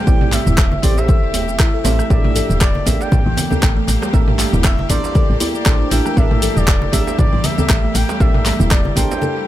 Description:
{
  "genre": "afro house",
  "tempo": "118 BPM",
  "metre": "4/4",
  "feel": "swing 56% on 16ths",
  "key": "unclear",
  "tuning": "A4 = 442 Hz",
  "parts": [
    { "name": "expressive synth lead", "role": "melody", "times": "0.0-9.5 s", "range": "D5 to G5", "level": "-25 LUFS", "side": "left 1 dB", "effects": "chorus, dub echo" },
    { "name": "clear symphonic string section", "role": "sustained chords", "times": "0.0-9.5 s", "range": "C3 to G4", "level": "-28 LUFS", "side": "left 1 dB", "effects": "sidechain pumping" },
    { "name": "buzzing kalimba", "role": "arpeggios", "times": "0.0-9.4 s", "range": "E3 to A4", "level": "-24 LUFS", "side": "equal", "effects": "sidechain pumping, dub echo" },
    { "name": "deep mellow chord stab", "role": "stabs", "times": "0.0-9.4 s", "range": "C4 to E5", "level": "-26 LUFS", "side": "right 4 dB", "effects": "chorus, sidechain pumping, tape echo" },
    { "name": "woody FM bass", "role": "bass", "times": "0.1-9.1 s", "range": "E1 to A1", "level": "-19 LUFS", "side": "equal", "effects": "sidechain pumping" },
    { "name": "deep house drum kit", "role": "drums", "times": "0.1-9.3 s", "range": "handclaps, hi-hat, rim click, shaker, toms", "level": "-21 LUFS", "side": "equal", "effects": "tape echo" },
    { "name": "electronic kick drum", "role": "drums", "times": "0.1-9.1 s", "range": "none", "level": "-15 LUFS", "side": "equal", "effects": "none" },
    { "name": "djembe", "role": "percussion", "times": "0.1-9.2 s", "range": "none", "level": "-25 LUFS", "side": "right 3 dB", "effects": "tape echo" },
    { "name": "congas", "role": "percussion", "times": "0.3-9.3 s", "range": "none", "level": "-27 LUFS", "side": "left 1 dB", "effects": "none" }
  ],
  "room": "digital ambience",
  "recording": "echo-heavy mix",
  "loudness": "-13 LUFS",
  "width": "side -13 dB against mid",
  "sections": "0.0-9.5 A section",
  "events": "break 9.2",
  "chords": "0.0 Am7; 2.1 Gmadd9",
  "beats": "| 0.07 0.58 1.08 1.59 | 2.10 2.61 3.12 3.63 | 4.14 4.64 5.15 5.66 | 6.17 6.68 7.19 7.70 | 8.20 8.71 9.22"
}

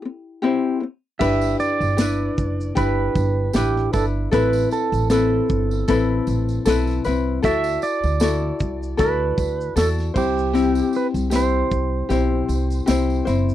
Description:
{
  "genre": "acoustic pop",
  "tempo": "77 BPM",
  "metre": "4/4",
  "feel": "swing 55% on 16ths",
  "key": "G major",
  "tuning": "A4 = 440 Hz",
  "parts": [
    { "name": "ukulele", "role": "accompaniment", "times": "0.0-13.5 s", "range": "C4 to D5", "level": "-22 LUFS", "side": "left 5 dB", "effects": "none" },
    { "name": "clean lap steel guitar", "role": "melody", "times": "1.2-13.2 s", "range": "G4 to E5", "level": "-24 LUFS", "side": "right 6 dB", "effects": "none" },
    { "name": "upright bass", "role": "bass", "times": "1.2-13.5 s", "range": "F#1 to E2", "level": "-23 LUFS", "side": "right 1 dB", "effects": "none" },
    { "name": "modern studio drum kit", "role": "drums", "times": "1.2-13.5 s", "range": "crash cymbal, kick drum, shaker, snare drum", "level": "-24 LUFS", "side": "equal", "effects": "none" },
    { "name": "tambourine", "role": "percussion", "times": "1.2-13.5 s", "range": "none", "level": "-39 LUFS", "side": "right 8 dB", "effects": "none" }
  ],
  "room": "little or no reverb",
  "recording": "dry, close 1970s-style studio recording",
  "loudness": "-18 LUFS",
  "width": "side -12 dB against mid",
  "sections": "0.0-1.2 A section; 1.2-13.5 B section",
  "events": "none",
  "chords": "0.0 C; 1.2 G6; 4.3 Amadd9; 7.4 Dadd9; 10.2 C",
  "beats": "0.43 | 1.21 1.99 2.77 3.55 | 4.33 5.11 5.88 6.66 | 7.44 8.22 8.99 9.77 | 10.55 11.32 12.10 12.88"
}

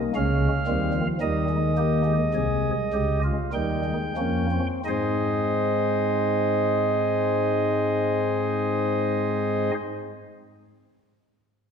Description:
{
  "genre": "classical, baroque-style 4-part fugue for pipe organ",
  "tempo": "43-59 BPM",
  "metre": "3/4",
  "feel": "straight",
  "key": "Ab major",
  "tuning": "A4 = 440 Hz",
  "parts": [
    { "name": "pipe organ, flutes", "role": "solo", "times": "0.0-9.7 s", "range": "C2 to G5", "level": "-22 LUFS", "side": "equal", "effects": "none" }
  ],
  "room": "wet concert hall reverb, RT60 1.9 s",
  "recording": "minimal, uncompressed stereo recording",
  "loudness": "-22 LUFS",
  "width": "side -6 dB against mid",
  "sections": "0.0-4.9 A section; 4.9-9.0 B section",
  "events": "slowing down 0.0-4.9",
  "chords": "0.2 Db; 1.2 Ab/Eb; 3.5 Eb7; 4.9 Ab",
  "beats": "0.16 | 1.22 2.34 3.54 | 4.85 6.22 7.58"
}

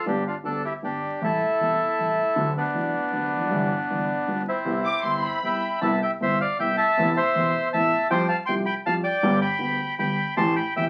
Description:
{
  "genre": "tango",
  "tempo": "157 BPM",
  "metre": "3/4",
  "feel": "rubato",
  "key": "C major",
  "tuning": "A4 = 440 Hz",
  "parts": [
    { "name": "bandoneon", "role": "melody", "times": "0.0-10.8 s", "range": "B3 to C6", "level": "-26 LUFS", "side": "equal", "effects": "none" },
    { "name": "dark concert grand piano", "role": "accompaniment", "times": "0.1-10.9 s", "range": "E1 to G4", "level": "-30 LUFS", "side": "equal", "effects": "none" },
    { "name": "rich studio violin section", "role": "second line", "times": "4.9-5.8 s", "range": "B5 to D6", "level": "-29 LUFS", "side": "equal", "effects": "none" }
  ],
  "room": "wet studio ambience, RT60 0.5 s",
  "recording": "very old 78 rpm record, vinyl crackle",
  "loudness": "-24 LUFS",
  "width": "mono",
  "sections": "0.0-5.8 A section; 5.8-10.9 B section",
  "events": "none",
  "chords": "0.1 G; 1.2 Am7; 2.4 D7; 3.5 C/G; 4.3 G7; 4.6 Cmaj7; 7.0 Amadd9; 8.1 Fsus2; 9.2 G; 10.4 Am7",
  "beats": "| 0.05 0.43 0.82 | 1.21 1.60 1.98 | 2.37 2.75 3.12 | 3.50 3.88 4.26 | 4.65 5.03 5.42 | 5.81 6.19 6.57 | 6.96 7.33 7.71 | 8.09 8.46 8.84 | 9.22 9.60 9.98 | 10.37 10.75"
}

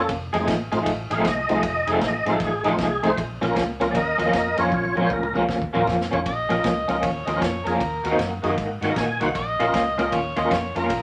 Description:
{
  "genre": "electric blues shuffle",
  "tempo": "156 BPM",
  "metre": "4/4",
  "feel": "swing 63% on 8ths",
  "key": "Bb minor",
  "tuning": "A4 = 440 Hz",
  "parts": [
    { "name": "tonewheel organ", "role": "accompaniment", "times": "0.0-10.8 s", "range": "A3 to Ab5", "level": "-27 LUFS", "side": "equal", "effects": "slow rotary speaker, overdrive, chorus vibrato" },
    { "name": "electric guitar through a small old amp", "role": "riff", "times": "0.0-11.0 s", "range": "Bb2 to G#4", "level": "-26 LUFS", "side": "equal", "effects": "tremolo" },
    { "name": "vintage muted fingered electric bass", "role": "bass", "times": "0.0-11.0 s", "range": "F1 to Bb2", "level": "-35 LUFS", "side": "equal", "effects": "none" },
    { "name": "vintage drum kit", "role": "drums", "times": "0.1-11.0 s", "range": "kick drum, ride cymbal, snare drum, toms", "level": "-32 LUFS", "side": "equal", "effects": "none" },
    { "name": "overdriven harmonica", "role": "second line", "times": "6.3-11.0 s", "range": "Bb4 to Eb5", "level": "-29 LUFS", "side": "equal", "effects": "none" }
  ],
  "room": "wet studio reverb, RT60 0.6 s",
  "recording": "none",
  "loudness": "-23 LUFS",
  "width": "mono",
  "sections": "0.0-6.3 A section; 6.3-11.0 A section",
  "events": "drum fill 4.7-6.3; harmonica solo 6.3-11.0; tonewheel organ fill 8.8-9.4",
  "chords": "0.1 F7#9; 3.2 Bbm; 7.8 Ebm; 9.4 Bbm",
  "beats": "| 0.09 0.48 0.86 1.25 | 1.63 2.02 2.40 2.79 | 3.17 3.56 3.95 4.33 | 4.72 5.10 5.49 5.87 | 6.26 6.65 7.03 7.42 | 7.81 8.19 8.58 8.96 | 9.35 9.74 10.12 10.51 | 10.90"
}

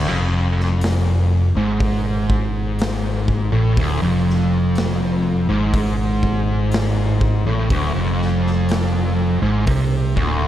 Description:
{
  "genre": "stoner and doom metal",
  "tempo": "61 BPM",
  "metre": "4/4",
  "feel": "straight",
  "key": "unclear",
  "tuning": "A4 = 444 Hz",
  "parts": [
    { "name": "fuzz guitar", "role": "riff", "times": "0.0-10.5 s", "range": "D2 to C3", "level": "-19 LUFS", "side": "equal", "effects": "distortion" },
    { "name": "fingered electric bass", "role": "bass", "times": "0.0-10.5 s", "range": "D1 to C2", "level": "-21 LUFS", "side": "equal", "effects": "overdrive" },
    { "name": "big rock drum kit", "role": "drums", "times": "0.6-10.4 s", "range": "hi-hat, kick drum, snare drum", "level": "-24 LUFS", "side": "equal", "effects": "none" }
  ],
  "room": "light reverb, studio ambience",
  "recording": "dark, warm production",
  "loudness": "-16 LUFS",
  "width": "side -12 dB against mid",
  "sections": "0.0-10.5 A section",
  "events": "none",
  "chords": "0.0 Dm",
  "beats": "0.82 1.80 2.79 | 3.77 4.75 5.74 6.72 | 7.71 8.69 9.68"
}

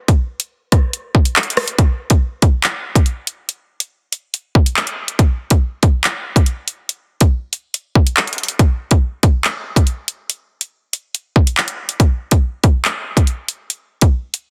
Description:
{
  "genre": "hip hop",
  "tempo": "141 BPM",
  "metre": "4/4",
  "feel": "half-time",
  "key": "none",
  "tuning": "none",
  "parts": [
    { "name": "drill drum kit", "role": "drums", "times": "0.1-14.4 s", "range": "handclaps, hi-hat, kick drum, rim click", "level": "-15 LUFS", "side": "equal", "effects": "none" }
  ],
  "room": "light reverb",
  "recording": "dense, heavily limited modern master",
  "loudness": "-17 LUFS",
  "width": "mono",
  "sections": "0.0-1.8 A section; 1.8-14.5 B section",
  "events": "none",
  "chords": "none",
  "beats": "| 0.08 0.51 0.93 1.36 | 1.78 2.21 2.64 3.06 | 3.49 3.91 4.34 4.76 | 5.19 5.62 6.04 6.47 | 6.89 7.32 7.74 8.17 | 8.59 9.02 9.45 9.87 | 10.30 10.72 11.15 11.57 | 12.00 12.42 12.85 13.28 | 13.70 14.13"
}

